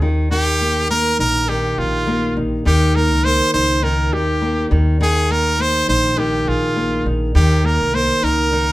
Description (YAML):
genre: acoustic pop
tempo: 102 BPM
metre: 4/4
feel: swing 55% on 16ths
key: Eb mixolydian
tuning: A4 = 441 Hz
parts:
  - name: brilliant trumpet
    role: melody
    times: 0.0-8.7 s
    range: F4 to C5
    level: -18 LUFS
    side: right 1 dB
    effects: none
  - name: flamenco guitar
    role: accompaniment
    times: 0.0-8.7 s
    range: Eb3 to Ab4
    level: -20 LUFS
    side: left 1 dB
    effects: none
  - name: upright bass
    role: bass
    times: 0.0-8.7 s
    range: Bb1 to Eb2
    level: -19 LUFS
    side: equal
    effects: none
room: moderate studio reverb, RT60 0.8 s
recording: band playing live in one room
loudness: -15 LUFS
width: side -17 dB against mid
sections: 0.0-8.7 A section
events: none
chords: 0.0 Eb; 4.7 Absus2; 7.4 Eb